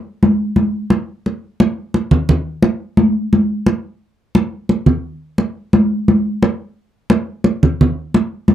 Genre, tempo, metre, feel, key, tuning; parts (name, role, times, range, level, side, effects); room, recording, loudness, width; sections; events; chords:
soul; 87 BPM; 4/4; straight
congas; percussion; 0.2-8.5 s; -13 LUFS; equal
light reverb; dry, close 1970s-style studio recording; -14 LUFS; side -11 dB against mid
0.0-8.5 A section